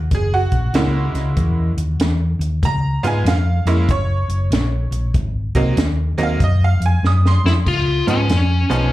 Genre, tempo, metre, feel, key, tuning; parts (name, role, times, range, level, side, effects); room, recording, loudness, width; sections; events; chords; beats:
electric blues shuffle; 95 BPM; 4/4; swing 65% on 8ths; A4 = 439 Hz
hollow-body short-scale fingered electric bass; bass; 0.0-8.9 s; Gb1 to Ab2; -17 LUFS; equal
tack piano; accompaniment; 0.1-8.9 s; F3 to Eb6; -22 LUFS; right 3 dB; plate reverb, slapback echo
compact cocktail drum kit; drums; 0.1-8.8 s; crash cymbal, hi-hat, kick drum, snare drum; -21 LUFS; equal
smooth overdriven lead guitar; melody; 7.5-8.9 s; Db4 to F4; -20 LUFS; left 3 dB; plate reverb, slapback echo
light reverb; live gig heard through the venue's PA, club reverb; -15 LUFS; side -16 dB against mid
0.0-7.7 A section; 7.7-8.9 B section
drum fill 7.0-7.7
0.1 Gb7; 2.6 Db7; 3.9 Gb; 5.1 Ab7; 7.7 Db7
| 0.11 0.74 1.37 2.00 | 2.63 3.26 3.89 4.51 | 5.14 5.77 6.40 7.03 | 7.66 8.29 8.92